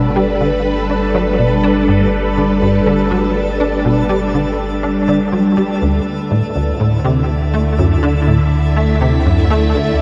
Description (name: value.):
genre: ambient, sequencer-driven space music.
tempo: 122 BPM.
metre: 4/4.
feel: straight.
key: G major.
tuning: A4 = 440 Hz.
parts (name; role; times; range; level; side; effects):
phased string machine; sustained chords; 0.0-10.0 s; D3 to E5; -18 LUFS; equal; ensemble chorus, phaser.
tight sequencer bass; riff; 0.0-9.9 s; D2 to D4; -19 LUFS; equal; ensemble chorus, tape echo.
round analog bass; bass; 0.0-10.0 s; G1 to D2; -22 LUFS; equal; none.
twinkling granular texture; texture; 0.0-10.0 s; A3 to A4; -29 LUFS; equal; built-in reverb.
room: wet lush hall reverb, RT60 2.9 s.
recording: dreamy mix soaked in reverb.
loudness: -15 LUFS.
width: mono.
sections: 0.0-10.0 A section.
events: none.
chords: 0.0 Gadd9; 5.8 Dadd9.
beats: 0.40 0.90 1.39 | 1.88 2.37 2.86 3.35 | 3.85 4.34 4.83 5.32 | 5.81 6.31 6.80 7.29 | 7.78 8.27 8.77 9.26 | 9.75.